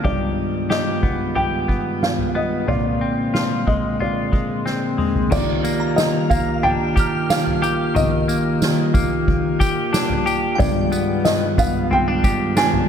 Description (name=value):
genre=dream pop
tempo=91 BPM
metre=4/4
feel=straight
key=Eb major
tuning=A4 = 440 Hz
part: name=mellow tonewheel organ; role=sustained chords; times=0.0-12.9 s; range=D3 to G4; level=-24 LUFS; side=right 3 dB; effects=slow rotary speaker, low-pass filter, shimmer reverb
part: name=semi-hollow electric guitar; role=arpeggios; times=0.0-12.9 s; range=G2 to G4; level=-22 LUFS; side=left 4 dB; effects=lush chorus, low-pass filter, tape echo, shimmer reverb
part: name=soft-mallet drum kit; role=drums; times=0.0-12.9 s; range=crash cymbal, kick drum, snare drum, tambourine, toms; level=-22 LUFS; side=equal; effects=none
part: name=felt-muted upright piano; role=melody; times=0.1-12.9 s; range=D5 to Ab5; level=-24 LUFS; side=right 1 dB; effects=low-pass filter, tape echo, shimmer reverb
part: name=shimmering bell with halo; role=texture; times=5.8-10.9 s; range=G5 to F6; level=-31 LUFS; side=right 2 dB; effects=ensemble chorus, tape echo, shimmer reverb
room=moderate lush hall reverb, RT60 2.1 s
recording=none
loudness=-17 LUFS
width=side -8 dB against mid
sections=0.0-5.3 A section; 5.3-12.9 B section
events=drum fill 4.7-5.3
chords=0.0 G7b9b13; 2.7 Bb9; 5.3 Ebmaj9; 10.6 G7b9b13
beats=| 0.05 0.71 1.37 2.03 | 2.69 3.35 4.00 4.66 | 5.32 5.98 6.64 7.30 | 7.96 8.62 9.28 9.94 | 10.60 11.26 11.92 12.58